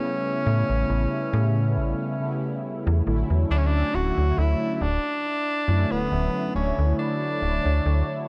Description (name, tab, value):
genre	vaporwave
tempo	69 BPM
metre	4/4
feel	swing 53% on 16ths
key	D major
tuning	A4 = 440 Hz
part	breathy tenor saxophone	melody	0.0-8.3 s	B3 to F#4	-30 LUFS	equal	vintage 12-bit sampler grit, tape echo
part	mellow synth brass	accompaniment	0.0-8.3 s	C#3 to C#5	-30 LUFS	equal	phaser, subtle chorus, vintage 12-bit sampler grit
part	slap-like FM bass	bass	0.5-8.0 s	D1 to A2	-25 LUFS	equal	none
room	light reverb, small room reverb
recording	cassette tape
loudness	-24 LUFS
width	mono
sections	0.0-3.5 A section; 3.5-8.3 B section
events	none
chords	0.0 A9; 3.5 Dmaj7